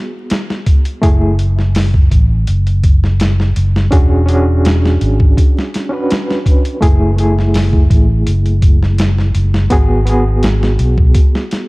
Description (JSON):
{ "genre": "trip hop", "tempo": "83 BPM", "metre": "4/4", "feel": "straight", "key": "F# minor", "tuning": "A4 = 440 Hz", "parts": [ { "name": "overdriven reed electric piano", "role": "accompaniment", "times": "0.0-11.7 s", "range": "A3 to B4", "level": "-18 LUFS", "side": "equal", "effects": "tremolo, tape echo" }, { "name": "boom bap sampler-style drum kit", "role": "drums", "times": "0.3-11.7 s", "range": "hi-hat, kick drum, snare drum", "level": "-13 LUFS", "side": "equal", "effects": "none" }, { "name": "fingered electric bass", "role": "bass", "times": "1.0-11.1 s", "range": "E1 to B1", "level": "-12 LUFS", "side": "equal", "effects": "none" } ], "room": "digital ambience", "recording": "dark, warm production, vinyl crackle", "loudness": "-10 LUFS", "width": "side -24 dB against mid", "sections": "0.0-11.7 A section", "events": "none", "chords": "0.0 G#m7; 1.0 F#m; 3.9 E13; 6.8 F#m9; 9.7 G#m7" }